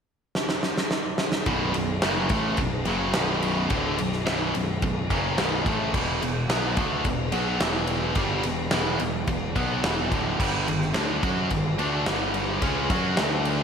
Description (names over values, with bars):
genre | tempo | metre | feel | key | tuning
hard rock | 108 BPM | 4/4 | straight | B minor | A4 = 437 Hz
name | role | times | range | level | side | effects
big rock drum kit | drums | 0.3-13.6 s | crash cymbal, kick drum, ride cymbal, snare drum | -26 LUFS | equal | none
tight distorted guitar | riff | 1.5-13.6 s | B1 to F#4 | -26 LUFS | equal | distortion
fuzz picked electric bass | bass | 1.5-13.6 s | B0 to F#2 | -30 LUFS | equal | overdrive
room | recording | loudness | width
moderate lush hall reverb, RT60 2.6 s | big arena sound | -22 LUFS | side -6 dB against mid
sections
0.0-1.5 A section; 1.5-13.6 B section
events
drum fill 0.4-1.5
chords
0.0 N.C.; 1.5 Bm; 5.9 E5; 10.4 G#5; 12.1 G5; 12.6 C#sus4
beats
0.35 0.91 | 1.47 2.03 2.59 3.15 | 3.71 4.27 4.83 5.39 | 5.95 6.50 7.06 7.62 | 8.18 8.73 9.29 9.85 | 10.40 10.96 11.51 12.07 | 12.62 13.18